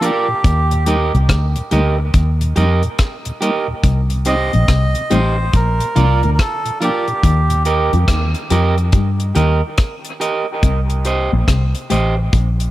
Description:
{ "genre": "dub reggae", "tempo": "71 BPM", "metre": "4/4", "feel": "swing 64% on 16ths", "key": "unclear", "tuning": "A4 = 440 Hz", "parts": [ { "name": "melodica", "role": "melody", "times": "0.0-7.6 s", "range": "G4 to Eb5", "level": "-21 LUFS", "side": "right 2 dB", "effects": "dub echo" }, { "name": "electric guitar at the edge of break-up", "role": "accompaniment", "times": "0.0-12.2 s", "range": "F4 to Eb5", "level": "-21 LUFS", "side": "right 4 dB", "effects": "dub echo" }, { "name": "mellow tonewheel organ", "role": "accompaniment", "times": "0.0-7.6 s", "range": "Eb2 to Eb4", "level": "-24 LUFS", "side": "left 1 dB", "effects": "chorus vibrato, stopped rotary speaker" }, { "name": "deep reggae drum kit", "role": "drums", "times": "0.0-12.7 s", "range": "hi-hat, kick drum, rim click", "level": "-17 LUFS", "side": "equal", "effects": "none" }, { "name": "vintage muted fingered electric bass", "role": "bass", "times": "0.4-12.7 s", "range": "A1 to G2", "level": "-15 LUFS", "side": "equal", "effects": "none" }, { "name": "mellow electric guitar", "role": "riff", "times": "3.8-12.6 s", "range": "A2 to G3", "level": "-25 LUFS", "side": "left 5 dB", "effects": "wide subtle chorus, dub echo" } ], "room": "little or no reverb", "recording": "echo-heavy mix", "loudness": "-14 LUFS", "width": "side -15 dB against mid", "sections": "0.0-12.7 A section", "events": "break 0.0-3.8", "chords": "0.4 Eb; 3.8 Cm; 5.5 Bb; 7.2 Eb; 10.6 Cm", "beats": "| 0.45 1.29 2.14 2.99 | 3.84 4.69 5.54 6.39 | 7.24 8.09 8.93 9.78 | 10.63 11.48 12.33" }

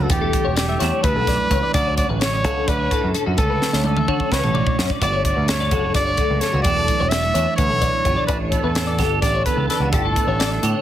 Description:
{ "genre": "math rock and midwest emo", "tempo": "256 BPM (eighths)", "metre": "7/8", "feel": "straight", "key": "D major", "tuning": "A4 = 436 Hz", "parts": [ { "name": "warm trumpet", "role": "melody", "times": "0.0-10.8 s", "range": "G4 to E5", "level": "-22 LUFS", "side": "equal", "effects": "none" }, { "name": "twelve-string electric guitar", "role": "accompaniment", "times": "0.0-10.8 s", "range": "D2 to G4", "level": "-26 LUFS", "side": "right 8 dB", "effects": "ensemble chorus" }, { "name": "twelve-string electric guitar", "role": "arpeggios", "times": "0.0-10.8 s", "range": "F#4 to E5", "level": "-25 LUFS", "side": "left 8 dB", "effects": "ensemble chorus" }, { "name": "overdriven picked electric bass", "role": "bass", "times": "0.0-10.7 s", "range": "E1 to D3", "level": "-23 LUFS", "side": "equal", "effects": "none" }, { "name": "crisp fusion drum kit", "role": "drums", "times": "0.1-10.7 s", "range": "hi-hat, kick drum, snare drum, toms", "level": "-23 LUFS", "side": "equal", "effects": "none" } ], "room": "light reverb", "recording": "heavily compressed radio sound", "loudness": "-17 LUFS", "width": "side -11 dB against mid", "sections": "0.0-10.8 A section", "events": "drum fill 3.6-5.0", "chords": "0.1 Em11; 1.7 Dmaj7; 5.0 Gmaj7sus2; 6.7 Em11; 8.3 A9sus4", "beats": "| 0.10 0.33 0.57 0.80 1.04 1.27 1.51 | 1.74 1.98 2.21 2.44 2.68 2.91 3.15 | 3.38 3.61 3.85 4.08 4.32 4.55 4.78 | 5.02 5.25 5.49 5.72 5.95 6.19 6.42 | 6.65 6.89 7.12 7.36 7.59 7.82 8.06 | 8.29 8.53 8.76 8.99 9.23 9.46 9.70 | 9.93 10.16 10.40 10.63" }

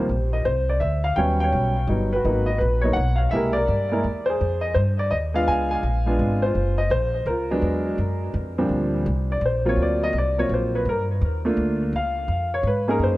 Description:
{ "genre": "jazz", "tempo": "167 BPM", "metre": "3/4", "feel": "swing 65% on 8ths", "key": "Bb major from 8.7 s", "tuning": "A4 = 438 Hz", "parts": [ { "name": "warm grand piano", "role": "melody", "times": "0.0-13.2 s", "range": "Bb2 to Ab5", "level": "-22 LUFS", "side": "equal", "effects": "tape echo" }, { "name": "upright bass", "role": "bass", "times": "0.1-13.2 s", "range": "Gb1 to Ab2", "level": "-24 LUFS", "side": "equal", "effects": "none" } ], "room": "moderate spring reverb, RT60 1.4 s", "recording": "echo-heavy mix", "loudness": "-20 LUFS", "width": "side -17 dB against mid", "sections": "0.1-8.7 A section; 8.7-13.2 B section", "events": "grand piano solo 8.7-13.2", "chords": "0.1 Bb69; 1.2 Eb7alt; 2.2 Abm7; 3.3 C7b13; 4.4 Fm9; 5.5 Db7b9; 6.6 Gbmaj7; 7.6 E9; 8.3 Fsus2; 8.7 Bb69; 10.8 Gm9; 11.9 Db", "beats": "| 0.09 0.45 0.81 | 1.17 1.53 1.89 | 2.25 2.60 2.96 | 3.32 3.68 4.04 | 4.40 4.76 5.12 | 5.47 5.83 6.19 | 6.55 6.91 7.27 | 7.63 7.98 8.34 | 8.70 9.06 9.42 | 9.78 10.13 10.49 | 10.85 11.21 11.56 | 11.92 12.28 12.64 | 13.00" }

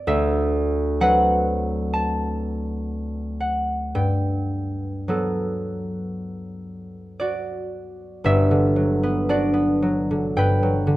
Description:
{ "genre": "classical, solo harp piece", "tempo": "52-65 BPM", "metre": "4/4", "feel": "rubato", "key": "G major", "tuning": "A4 = 439 Hz", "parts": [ { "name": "concert harp", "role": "solo", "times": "0.0-11.0 s", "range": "G1 to A5", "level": "-20 LUFS", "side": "equal", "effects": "none" } ], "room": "light reverb", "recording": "close, detailed microphones", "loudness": "-20 LUFS", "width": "side -16 dB against mid", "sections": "0.0-8.2 A section; 8.2-11.0 B section", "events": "none", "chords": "0.1 D13; 4.0 Gmaj9; 8.2 Gmaj7", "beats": "| 0.07 1.00 1.94 2.89 | 3.96 5.07 6.15 7.20 | 8.25 9.27 10.36" }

